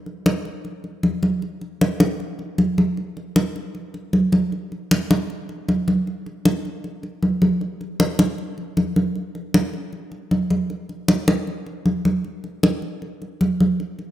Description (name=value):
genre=latin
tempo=155 BPM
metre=4/4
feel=straight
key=none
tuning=none
part: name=congas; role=percussion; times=0.1-14.1 s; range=none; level=-19 LUFS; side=equal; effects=none
room=moderate lush hall reverb, RT60 2.4 s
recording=rough home demo mix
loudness=-19 LUFS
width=side -12 dB against mid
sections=0.0-10.7 A section; 10.7-14.1 A section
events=none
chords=none